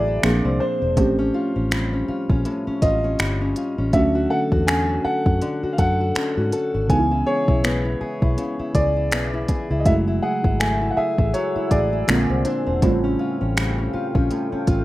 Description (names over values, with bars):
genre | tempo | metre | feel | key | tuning
contemporary R&B | 81 BPM | 4/4 | swing 58% on 16ths | unclear | A4 = 441 Hz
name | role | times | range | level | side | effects
warm concert grand piano | melody | 0.0-14.8 s | B#4 to G#5 | -26 LUFS | equal | none
muted felt-like synth keys | accompaniment | 0.0-14.8 s | C#3 to G#4 | -26 LUFS | right 2 dB | chorus
fingerpicked acoustic archtop guitar | arpeggios | 0.0-14.8 s | A2 to A4 | -25 LUFS | left 2 dB | none
vintage muted fingered electric bass | bass | 0.0-14.8 s | E1 to G#2 | -23 LUFS | equal | none
smooth R&B drum kit | drums | 0.2-14.8 s | finger snaps, hi-hat, kick drum | -22 LUFS | equal | none
deep dark ambient pad | sustained chords | 10.7-14.8 s | G#4 to E6 | -32 LUFS | equal | chorus, built-in reverb
room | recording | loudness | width
little or no reverb | rough home demo mix | -18 LUFS | side -17 dB against mid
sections
0.0-14.8 A section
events
none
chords
0.2 A#9; 1.0 A7alt; 3.9 Dmaj7; 6.9 C#m7; 9.9 F#m9; 12.1 A#9; 12.8 A7alt